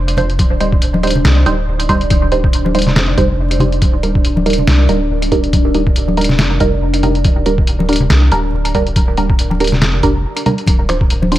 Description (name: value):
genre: deep dubstep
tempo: 140 BPM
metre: 4/4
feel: swing 56% on 16ths, half-time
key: unclear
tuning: A4 = 439 Hz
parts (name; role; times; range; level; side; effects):
- deep dark ambient pad; sustained chords; 0.0-11.4 s; D4 to D5; -22 LUFS; left 1 dB; chorus, built-in reverb
- soft dub sub bass; bass; 0.0-11.4 s; D1 to C2; -16 LUFS; equal; tube saturation
- trip hop sampler-style drum kit; drums; 0.1-11.4 s; finger snaps, hi-hat, snare drum; -18 LUFS; equal; none
- filtered dub chord stab; stabs; 0.2-11.4 s; F3 to C5; -18 LUFS; right 2 dB; phaser, dub echo
- congas; percussion; 0.2-11.3 s; none; -19 LUFS; left 1 dB; none
- electronic kick drum; drums; 0.4-11.1 s; none; -14 LUFS; equal; none
room: little or no reverb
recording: vinyl crackle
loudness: -11 LUFS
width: side -14 dB against mid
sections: 0.0-11.4 A section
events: break 10.2-10.7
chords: 0.4 Cm/D; 3.8 Eb/D; 7.2 Gm/D; 10.7 Dm7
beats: | 0.39 0.82 1.25 1.68 | 2.10 2.53 2.96 3.39 | 3.82 4.25 4.67 5.10 | 5.53 5.96 6.39 6.82 | 7.25 7.67 8.10 8.53 | 8.96 9.39 9.82 10.25 | 10.68 11.10